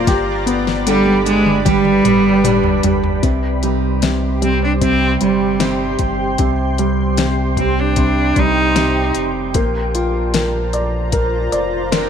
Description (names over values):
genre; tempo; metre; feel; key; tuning
pop ballad; 76 BPM; 4/4; straight; C minor; A4 = 440 Hz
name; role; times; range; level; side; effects
felt-muted upright piano; accompaniment; 0.0-12.1 s; C3 to D5; -19 LUFS; left 1 dB; none
shimmering ambient pad; sustained chords; 0.0-12.1 s; F4 to C6; -23 LUFS; equal; chorus, built-in reverb
picked plugged-in steel-string acoustic guitar; arpeggios; 0.0-12.1 s; Bb2 to Bb4; -25 LUFS; right 14 dB; none
warm sub bass; bass; 0.0-12.1 s; F1 to C2; -21 LUFS; equal; none
smooth R&B drum kit; drums; 0.1-12.1 s; hi-hat, kick drum, snare drum, toms; -20 LUFS; left 3 dB; none
bright cello; melody; 0.9-9.2 s; G3 to Eb4; -18 LUFS; right 1 dB; tape echo
room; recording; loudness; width
light reverb, studio reverb; 1960s-style stereo; -14 LUFS; side -8 dB against mid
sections
0.0-3.2 A section; 3.2-12.1 B section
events
drum fill 0.1-3.2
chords
0.1 G; 3.2 Cm; 9.6 Bbadd9